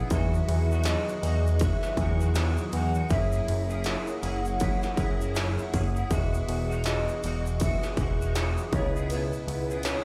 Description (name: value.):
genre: indie pop, bedroom pop.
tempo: 80 BPM.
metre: 4/4.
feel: swing 60% on 16ths.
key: E lydian.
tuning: A4 = 438 Hz.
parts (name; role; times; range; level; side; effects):
hollow clarinet-like synth lead; melody; 0.0-10.0 s; B4 to F#5; -37 LUFS; equal; phaser, lush chorus, plate reverb, slapback echo, delay.
clean electric guitar; accompaniment; 0.0-10.0 s; C#3 to G#4; -40 LUFS; equal; ensemble chorus, vibrato effect, slapback echo.
overdriven tine electric piano; accompaniment; 0.0-10.0 s; D#3 to F#5; -39 LUFS; equal; cassette tape, plate reverb, slapback echo.
string machine, cellos; sustained chords; 0.0-10.0 s; C#3 to A#4; -42 LUFS; equal; none.
fat analog bass; bass; 0.0-10.0 s; E1 to E2; -30 LUFS; equal; none.
industrial drum kit; drums; 0.1-10.0 s; hi-hat, kick drum, ride cymbal, snare drum; -33 LUFS; equal; distortion.
tube shaker; percussion; 0.1-10.0 s; none; -49 LUFS; equal; none.
room: little or no reverb.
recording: live gig heard through the venue's PA, club reverb.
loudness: -27 LUFS.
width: mono.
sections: 0.0-10.0 A section.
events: none.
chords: 0.1 Emaj9; 3.1 F#9; 6.1 Emaj9; 8.7 C#m7.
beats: | 0.10 0.85 1.60 2.35 | 3.10 3.85 4.61 5.36 | 6.11 6.86 7.61 8.35 | 9.10 9.85.